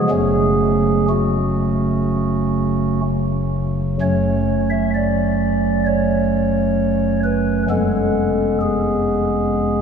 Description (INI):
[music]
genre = classical, chorale-style piece for pipe organ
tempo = 60-66 BPM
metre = 4/4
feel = rubato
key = F# minor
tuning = A4 = 438 Hz
[part]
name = pipe organ, stopped flute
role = solo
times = 0.0-9.8 s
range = E#1 to E5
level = -16 LUFS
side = right 1 dB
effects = none
[sound]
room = wet cathedral reverb, RT60 4.7 s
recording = heard from further back in the room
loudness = -16 LUFS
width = side -7 dB against mid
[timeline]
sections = 0.0-4.0 A section; 4.0-9.8 B section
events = none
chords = 0.1 F#m; 7.7 C#7/E#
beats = | 0.10 1.09 2.07 3.04 | 4.01 4.94 5.86 6.78 | 7.70 8.61 9.52